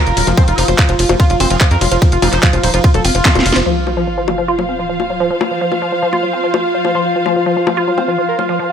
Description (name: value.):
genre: psychedelic trance.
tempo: 146 BPM.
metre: 4/4.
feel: straight.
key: unclear.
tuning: A4 = 440 Hz.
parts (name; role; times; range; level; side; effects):
overdriven synth lead; melody; 0.0-3.6, 7.0-8.7 s; F4 to C5; -20 LUFS; equal; chorus, phaser, sidechain pumping, dub echo.
evolving wavetable pad; sustained chords; 0.0-8.7 s; F4; -20 LUFS; right 1 dB; phaser, built-in reverb, sidechain pumping.
tight sequencer bass; bass; 0.1-3.6 s; Eb1 to F2; -16 LUFS; equal; tube saturation.
garage drum kit; drums; 0.1-8.5 s; bongos, handclaps, hi-hat, ride cymbal, snare drum; -17 LUFS; left 3 dB; small room reverb.
woody wave-folded pluck; riff; 0.2-8.6 s; F3 to F4; -19 LUFS; moving between left 5 dB and right 4 dB; chorus, auto-pan, sidechain pumping, dub echo.
vowel-sweep wobble bass; second line; 0.4-3.4 s; A3 to Eb4; -27 LUFS; right 4 dB; none.
electronic kick drum; drums; 0.4-3.3 s; none; -11 LUFS; equal; small room reverb.
sub drop; sound effects; 3.7-5.3 s; none; -24 LUFS; equal; none.
muted studio string section; texture; 3.7-8.7 s; F4 to F5; -22 LUFS; left 2 dB; sidechain pumping.
room: light reverb.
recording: none.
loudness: -12 LUFS.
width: side -8 dB against mid.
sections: 0.0-3.7 A section; 3.7-8.7 B section.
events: drop 0.0-3.7; drum fill 3.3-3.7; band accent 3.5; impact 3.7-5.3; filter sweep on synth arpeggio sound 3.7-8.7.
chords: 0.0 F5.